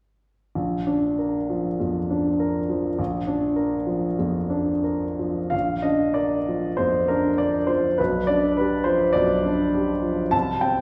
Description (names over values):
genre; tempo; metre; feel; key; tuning
classical, romantic character piece for solo piano; 85-105 BPM; 4/4; rubato; Bb major; A4 = 438 Hz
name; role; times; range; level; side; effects
warm upright piano; solo; 0.6-10.8 s; Bb1 to A5; -23 LUFS; equal; none
room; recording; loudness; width
wet recital hall reverb, RT60 1.7 s; heard from further back in the room, faint mains hum; -23 LUFS; mono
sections
0.6-5.5 A section; 5.5-10.8 B section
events
none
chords
0.6 Bb; 8.0 G7/B